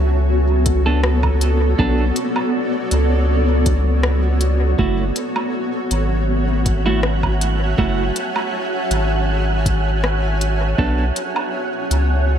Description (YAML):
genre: ambient dub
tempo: 80 BPM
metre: 4/4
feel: swing 53% on 16ths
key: F# minor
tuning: A4 = 440 Hz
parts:
  - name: granular cloud pad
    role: sustained chords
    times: 0.0-12.4 s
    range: B3 to A5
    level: -21 LUFS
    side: equal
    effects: built-in reverb
  - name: soft dub sub bass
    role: bass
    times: 0.0-12.4 s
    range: F#1 to C#2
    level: -18 LUFS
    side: equal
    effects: none
  - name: electronic kick drum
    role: drums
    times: 0.7-10.9 s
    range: none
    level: -22 LUFS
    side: equal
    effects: overdrive, studio reverb
  - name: organic electronic drum kit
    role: drums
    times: 0.7-12.1 s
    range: hi-hat, rim click, woodblock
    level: -25 LUFS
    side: equal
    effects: overdrive, studio reverb, dub echo
  - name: clean electric guitar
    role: stabs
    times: 0.9-11.0 s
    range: A3 to A4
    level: -25 LUFS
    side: right 3 dB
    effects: dub echo
  - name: wind-like tuned noise texture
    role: texture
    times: 6.1-12.4 s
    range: F#5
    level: -28 LUFS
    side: right 8 dB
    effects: built-in reverb
room: light reverb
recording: none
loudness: -16 LUFS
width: side -9 dB against mid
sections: 0.0-12.4 A section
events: none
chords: 0.0 Bm7; 4.8 F#m7; 10.8 Bm7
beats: 0.28 1.03 | 1.78 2.53 3.28 4.03 | 4.78 5.53 6.28 7.03 | 7.78 8.53 9.28 10.03 | 10.78 11.53 12.28